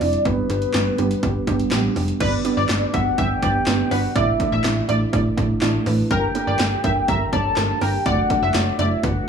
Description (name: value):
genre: synth-pop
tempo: 123 BPM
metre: 4/4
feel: straight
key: unclear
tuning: A4 = 442 Hz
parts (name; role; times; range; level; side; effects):
- soft octave-layered synth lead; melody; 0.0-9.3 s; B4 to Bb5; -24 LUFS; left 2 dB; chorus, phaser, digital delay
- warbly dusty pluck; accompaniment; 0.0-9.2 s; G3 to D5; -23 LUFS; right 4 dB; chorus
- slap-like FM bass; bass; 0.0-9.2 s; F1 to A1; -23 LUFS; equal; none
- punchy analog drum machine; drums; 0.0-9.1 s; crash cymbal, handclaps, hi-hat, kick drum, snare drum; -25 LUFS; left 1 dB; overdrive
- funky polysynth comp; second line; 2.2-8.9 s; Bb4 to E5; -27 LUFS; equal; chorus, digital delay
room: light reverb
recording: small room ambience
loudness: -18 LUFS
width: side -7 dB against mid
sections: 0.0-2.2 A section; 2.2-9.3 B section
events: none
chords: 0.3 G; 4.2 Asus4; 6.1 Gmadd9; 8.1 D/F#